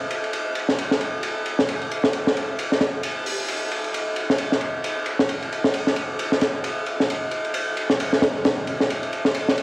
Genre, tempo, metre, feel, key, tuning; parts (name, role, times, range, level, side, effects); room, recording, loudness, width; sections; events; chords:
breakbeat; 133 BPM; 4/4; swing 58% on 16ths
crunchy breakbeat drum kit; drums; 0.1-9.6 s; hi-hat, ride cymbal, snare drum; -21 LUFS; equal
moderate spring reverb, RT60 2.1 s; home recording on cassette, vinyl crackle; -21 LUFS; side -30 dB against mid
0.0-9.6 A section